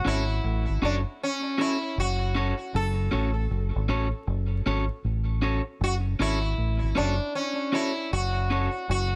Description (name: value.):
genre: roots reggae.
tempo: 78 BPM.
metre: 4/4.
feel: swing 64% on 16ths.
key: F# minor.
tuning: A4 = 438 Hz.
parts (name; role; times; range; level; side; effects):
sitar; melody; 0.0-9.2 s; C#4 to A4; -32 LUFS; equal; tape echo.
electric guitar at the edge of break-up; accompaniment; 0.0-8.7 s; C#4 to C#5; -33 LUFS; equal; tape echo, plate reverb.
deep dub fingered electric bass; bass; 0.1-9.2 s; F#1 to A1; -28 LUFS; equal; none.
room: light reverb.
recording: vinyl crackle.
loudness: -27 LUFS.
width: mono.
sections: 0.0-9.2 A section.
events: none.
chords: 0.0 F#m.